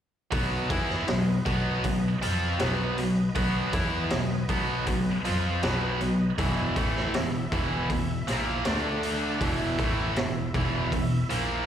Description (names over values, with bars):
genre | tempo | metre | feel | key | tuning
blues rock power trio and southern rock | 79 BPM | 4/4 | straight | B mixolydian | A4 = 440 Hz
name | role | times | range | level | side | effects
tonewheel organ | sustained chords | 0.3-11.7 s | D4 to E5 | -38 LUFS | right 4 dB | slow rotary speaker, overdrive, chorus vibrato
tight distorted guitar | riff | 0.3-11.7 s | E2 to E#4 | -27 LUFS | equal | distortion
rich double bass | bass | 0.3-11.7 s | E1 to E#2 | -31 LUFS | equal | none
raw garage drum kit | drums | 0.3-11.5 s | hi-hat, kick drum, snare drum | -31 LUFS | equal | none
room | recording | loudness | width
light reverb | live gig heard through the venue's PA, recital hall reverb | -24 LUFS | side -9 dB against mid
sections
0.3-11.7 A section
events
none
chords
0.3 B; 6.4 E5; 8.7 D5; 9.4 E5